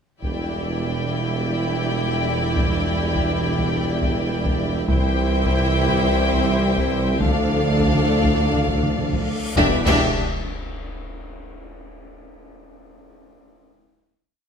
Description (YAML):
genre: cinematic, epic orchestral film score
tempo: 103 BPM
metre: 4/4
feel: straight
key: E phrygian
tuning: A4 = 440 Hz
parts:
  - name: warm symphonic violin section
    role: melody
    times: 0.2-10.2 s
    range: E5 to G5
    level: -28 LUFS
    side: left 5 dB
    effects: none
  - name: warm symphonic violin section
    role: second line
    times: 0.2-10.2 s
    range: G4 to D5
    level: -29 LUFS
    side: left 4 dB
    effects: none
  - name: rich studio viola section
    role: accompaniment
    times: 0.2-10.2 s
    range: D4 to E4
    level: -28 LUFS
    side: left 1 dB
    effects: none
  - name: mellow French horn section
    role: sustained chords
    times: 0.2-9.8 s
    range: G3 to D4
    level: -31 LUFS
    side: left 6 dB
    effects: none
  - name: rich symphonic string section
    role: sustained chords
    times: 0.2-9.9 s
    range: A3 to F5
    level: -30 LUFS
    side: left 1 dB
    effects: none
  - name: warm trombone section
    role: sustained chords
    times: 0.2-9.8 s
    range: A2 to F3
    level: -31 LUFS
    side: right 3 dB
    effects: none
  - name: clear symphonic double bass section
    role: bass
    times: 0.2-10.2 s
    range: E1 to D2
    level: -27 LUFS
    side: right 3 dB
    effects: none
  - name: dark symphonic cello section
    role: bass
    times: 0.2-10.2 s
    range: C2 to E2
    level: -26 LUFS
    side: right 2 dB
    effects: none
  - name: warm tuba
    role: bass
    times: 0.2-10.1 s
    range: E1 to D2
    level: -26 LUFS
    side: right 3 dB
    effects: none
  - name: taiko ensemble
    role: drums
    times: 0.2-11.0 s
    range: none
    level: -26 LUFS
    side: left 1 dB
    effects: none
  - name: cymbal swell, concert snare drum, concert bass drum and clash cymbals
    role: percussion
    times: 7.2-11.0 s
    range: none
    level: -31 LUFS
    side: left 1 dB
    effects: none
  - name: reverse cymbal and impact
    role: sound effects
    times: 9.0-11.9 s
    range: none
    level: -36 LUFS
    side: left 1 dB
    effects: none
room: moderate scoring stage reverb, RT60 1.5 s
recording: none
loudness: -18 LUFS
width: side -7 dB against mid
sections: 0.2-9.6 theme; 9.6-11.9 final chord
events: reverse cymbal 9.0-9.6; band accent 9.6-10.2; impact 9.6-11.9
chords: 0.2 Em7; 4.9 C; 7.2 Dm; 9.6 Em7